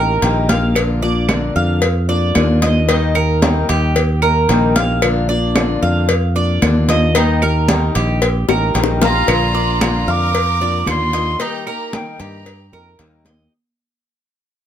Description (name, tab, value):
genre	latin, Cuban son and guajira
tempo	113 BPM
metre	4/4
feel	straight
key	Bb major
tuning	A4 = 440 Hz
part	picked acoustic archtop guitar	accompaniment	0.0-13.5 s	D3 to G4	-21 LUFS	left 5 dB	none
part	Cuban tres	arpeggios	0.0-13.5 s	Eb4 to F5	-21 LUFS	right 2 dB	none
part	fingered electric bass	bass	0.0-13.5 s	A1 to G2	-17 LUFS	right 1 dB	none
part	congas	percussion	0.2-13.5 s	none	-20 LUFS	equal	none
part	cowbell and bongos	percussion	0.2-13.5 s	none	-20 LUFS	left 4 dB	none
part	claves	percussion	0.8-13.0 s	none	-24 LUFS	right 6 dB	none
part	silver concert flute	melody	9.0-12.7 s	G5 to D6	-21 LUFS	right 2 dB	none
part	rich studio violin section	second line	9.0-12.7 s	Eb4 to Bb4	-24 LUFS	right 1 dB	none
room	light reverb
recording	close, detailed microphones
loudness	-13 LUFS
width	side -10 dB against mid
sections	0.0-9.3 A section; 9.3-13.5 B section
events	drum fill 8.5-9.3; fade-out 9.3-13.5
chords	0.0 Eb; 0.8 Bb; 2.9 Eb; 5.0 Bb; 7.2 Eb; 9.3 Bb; 11.4 Eb